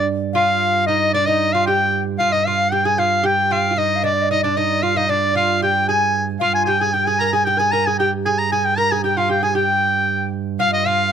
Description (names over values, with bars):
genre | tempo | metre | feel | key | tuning
medieval dance | 114 BPM | 2/4 | straight | G phrygian | A4 = 440 Hz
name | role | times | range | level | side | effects
edgy shawm | melody | 0.0-11.1 s | D5 to Bb5 | -18 LUFS | equal | none
lute | second line | 0.0-11.1 s | D4 to Bb4 | -24 LUFS | right 2 dB | none
pipe organ, principal | drone | 0.0-11.1 s | G2 | -24 LUFS | right 10 dB | none
alto recorder | second line | 0.3-11.1 s | D5 to Bb5 | -23 LUFS | left 8 dB | none
room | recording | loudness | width
light reverb | close, detailed microphones | -16 LUFS | side -8 dB against mid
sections
0.0-2.2 A section; 2.2-10.6 B section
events
none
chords
none